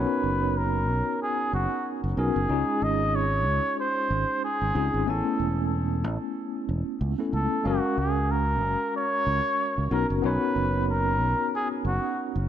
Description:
sunset chillout; 93 BPM; 4/4; swing 58% on 16ths; A4 = 440 Hz
trumpet with cup mute; melody; 0.0-12.2 s; F#4 to D#5; -27 LUFS; equal; ping-pong delay
mellow tine electric piano; accompaniment; 0.0-12.5 s; G#3 to G#5; -28 LUFS; moving between left 4 dB and right 5 dB; medium stereo tremolo, auto-pan
fingered electric bass; bass; 0.0-12.4 s; E1 to C#2; -27 LUFS; right 1 dB
moderate lush hall reverb, RT60 2.1 s; dark, warm production; -24 LUFS; side -10 dB against mid
0.0-12.5 A section
0.0 Bmaj9; 2.5 C#maj9; 5.1 Amaj9; 7.7 F#maj9; 9.9 Bmaj9
0.56 1.21 1.85 | 2.50 3.14 3.79 4.43 | 5.08 5.72 6.37 7.01 | 7.66 8.30 8.95 9.59 | 10.24 10.88 11.53 12.17

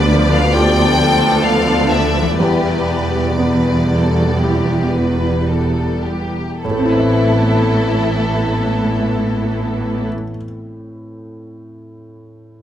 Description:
cinematic; 52-70 BPM; 4/4; rubato; A minor; A4 = 443 Hz
rich studio violin section; melody; 0.0-10.1 s; A4 to G5; -23 LUFS; left 2 dB
rich studio violin section; second line; 0.0-10.0 s; E4 to D5; -21 LUFS; left 2 dB
felt-muted upright piano; accompaniment; 0.0-12.6 s; D2 to E5; -22 LUFS; right 1 dB
warm studio viola section; accompaniment; 0.0-10.1 s; E3 to D4; -22 LUFS; equal
concert harp; arpeggios; 0.0-10.5 s; A2 to E5; -26 LUFS; left 7 dB
rich studio cello section; bass; 0.0-10.1 s; D2 to A2; -20 LUFS; right 2 dB
rich studio double bass section; bass; 0.0-10.1 s; E1 to D2; -21 LUFS; right 2 dB
light reverb; close, detailed microphones; -13 LUFS; side -10 dB against mid
0.0-6.6 A section; 6.6-11.1 B section
slowing down 0.0-6.6
0.0 G7/D; 2.4 Em7; 6.6 Amadd9
0.54 1.44 | 2.39 3.38 4.42 5.50 | 6.63 7.75 8.87 9.99

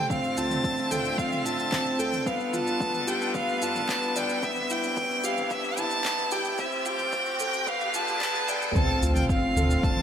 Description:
piano and strings electronica; 111 BPM; 4/4; straight; D dorian; A4 = 440 Hz
clear violin; melody; 0.0-10.0 s; E5 to A5; -28 LUFS; equal
clear string quartet; sustained chords; 0.0-10.0 s; C3 to F5; -34 LUFS; left 1 dB; sidechain pumping
felt-muted upright piano; riff; 0.0-10.0 s; B3 to G5; -30 LUFS; equal; digital delay
warm sub bass; bass; 0.0-9.8 s; D1 to G2; -29 LUFS; equal; sidechain pumping
electronic kick drum; drums; 0.1-9.9 s; -30 LUFS; equal; overdrive
organic electronic drum kit; drums; 0.1-10.0 s; handclaps, shaker, toms; -35 LUFS; right 1 dB
riser and sub drop; sound effects; 2.0-10.0 s; -35 LUFS; equal
moderate echo chamber reverb, RT60 1.8 s; high-pass filter; -24 LUFS; side -9 dB against mid
0.0-8.8 A section; 8.8-10.0 B section
build-up 0.0-8.8; filter sweep 0.0-8.8; riser 2.0-8.8; drop 8.8-10.0; impact 8.8-10.0
0.1 Dm7; 2.3 G7; 4.4 Cmaj7; 6.6 Am7; 7.7 G7; 8.8 Dm7
| 0.10 0.65 1.19 1.73 | 2.27 2.81 3.35 3.89 | 4.43 4.97 5.51 6.05 | 6.59 7.13 7.67 8.21 | 8.75 9.29 9.83

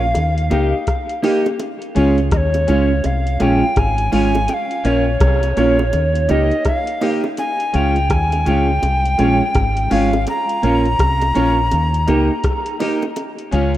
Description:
roots reggae; 83 BPM; 4/4; swing 62% on 16ths; A4 = 440 Hz
alto recorder; melody; 0.0-12.8 s; Db5 to Bb5; -20 LUFS; equal; tape echo
semi-hollow electric guitar; accompaniment; 0.0-13.8 s; Ab3 to G4; -20 LUFS; right 2 dB; lush chorus, tape echo
deep dub fingered electric bass; bass; 0.0-13.8 s; Ab1 to Eb2; -18 LUFS; equal
bongos; percussion; 0.1-13.4 s; -29 LUFS; right 2 dB
soft vintage rhythm box; drums; 0.2-13.8 s; hi-hat, kick drum, rim click; -20 LUFS; equal
bright grand piano; stabs; 0.5-13.7 s; Db4 to Eb5; -27 LUFS; left 4 dB
moderate lush hall reverb, RT60 2.1 s; rough home demo mix; -14 LUFS; side -13 dB against mid
0.0-13.8 A section
0.1 Eb; 1.6 Db; 4.5 Bbm; 5.9 Eb; 7.4 Db; 10.3 Bbm; 11.7 Eb; 13.2 Db
0.15 0.87 | 1.59 2.32 3.04 3.76 | 4.49 5.21 5.93 6.66 | 7.38 8.10 8.82 9.55 | 10.27 10.99 11.72 12.44 | 13.16

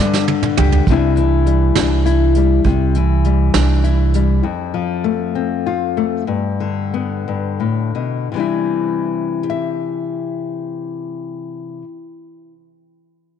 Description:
folk; 54-68 BPM (dotted quarters); 6/8; straight; C major; A4 = 445 Hz
nylon-string guitar; accompaniment; 0.0-12.5 s; F2 to E5; -18 LUFS; left 7 dB
upright bass; bass; 0.0-4.4 s; C2 to G3; -15 LUFS; right 2 dB
soft brush drum kit; drums; 0.1-4.3 s; hi-hat, kick drum, snare drum, toms; -20 LUFS; right 6 dB
light reverb, studio ambience; 1960s-style stereo with parts hard left and right, nothing above 10.7 kHz; -15 LUFS; side -8 dB against mid
0.9-8.3 A section; 8.3-12.8 B section
drum fill 0.0-0.9; slowing down 4.4-8.3
0.0 G; 0.9 Cadd9; 4.4 F; 6.3 G; 8.3 Cadd9
| 0.87 1.76 | 2.65 3.54 | 4.43 5.33 | 6.27 7.25 | 8.32 9.43 | 10.54 11.66

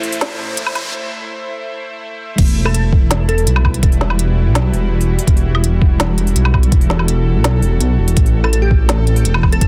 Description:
half-time drum and bass; 166 BPM; 4/4; half-time; E minor; A4 = 445 Hz
bowed-like drone; sustained chords; 0.0-9.7 s; E3 to E5; -26 LUFS; equal; built-in reverb, vintage 12-bit sampler grit, sidechain pumping
dark detuned saw bass; bass; 0.0-9.7 s; E1 to B1; -17 LUFS; equal
organic electronic drum kit; drums; 0.0-9.7 s; crash cymbal, hi-hat, snare drum, woodblock; -23 LUFS; equal
riser; sound effects; 0.0-0.9 s; -29 LUFS; equal
electronic kick drum; drums; 2.4-9.7 s; -15 LUFS; equal; overdrive
glassy wavetable pluck; melody; 2.7-3.6, 8.4-9.7 s; G4 to A4; -26 LUFS; equal; chorus, cassette tape, tape echo
little or no reverb; dense, heavily limited modern master, high-pass filter; -15 LUFS; mono
0.0-2.4 A section; 2.4-9.7 B section
build-up 0.0-2.4; riser 0.0-0.9; break 0.9-2.4; drop 2.4-9.7
0.0 Am; 2.4 Emadd9; 8.2 Am
0.22 0.58 | 0.94 1.30 1.66 2.02 | 2.38 2.75 3.11 3.47 | 3.83 4.19 4.55 4.91 | 5.28 5.64 6.00 6.36 | 6.72 7.08 7.44 7.81 | 8.17 8.53 8.89 9.25 | 9.61

